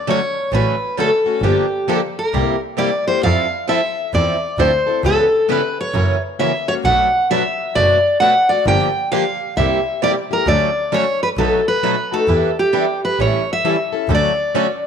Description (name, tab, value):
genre	acoustic string swing (jazz manouche)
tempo	133 BPM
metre	4/4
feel	swing 64% on 8ths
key	D major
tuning	A4 = 440 Hz
part	picked steel-string acoustic guitar	melody	0.0-14.9 s	G4 to G5	-17 LUFS	equal	none
part	picked plugged-in steel-string acoustic guitar	accompaniment	0.1-14.7 s	B2 to A4	-23 LUFS	left 10 dB	none
part	picked swing-style acoustic guitar	accompaniment	0.1-14.7 s	B2 to B4	-23 LUFS	right 11 dB	none
part	clear double bass	bass	0.5-14.2 s	F#1 to F#2	-20 LUFS	right 1 dB	none
room	moderate echo chamber reverb, RT60 1.6 s, small room ambience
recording	1960s-style stereo with parts hard left and right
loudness	-15 LUFS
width	side -7 dB against mid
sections	0.0-14.1 A section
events	none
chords	0.0 Dmaj7; 1.4 Gm7; 2.3 C7; 3.2 Fmaj7; 5.0 C#m7b5; 5.9 F#7; 6.8 Bm7; 8.7 Gm7; 9.6 C7; 10.5 Dmaj7; 11.4 B7; 12.3 Em7; 13.2 A7; 14.1 Dmaj7